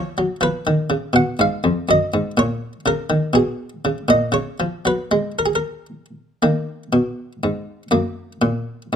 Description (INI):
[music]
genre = classical, baroque-style suite movement for harpsichord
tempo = 121 BPM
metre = 3/4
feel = rubato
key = F# major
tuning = A4 = 437 Hz
[part]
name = buff-stop harpsichord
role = solo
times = 0.0-9.0 s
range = E#2 to F#5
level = -17 LUFS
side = equal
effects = none
[sound]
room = light reverb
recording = close, detailed microphones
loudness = -18 LUFS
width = side -8 dB against mid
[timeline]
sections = 0.0-6.4 A section; 6.4-9.0 A section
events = none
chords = 0.4 C#7; 1.9 F#; 3.3 N.C.; 3.8 A#madd11; 4.3 C#; 4.8 F#add9; 6.4 Eb5; 7.9 Gb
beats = | 0.41 0.90 1.39 | 1.88 2.36 2.85 | 3.34 3.83 4.33 | 4.85 5.38 5.90 | 6.42 6.92 7.42 | 7.91 8.42 8.92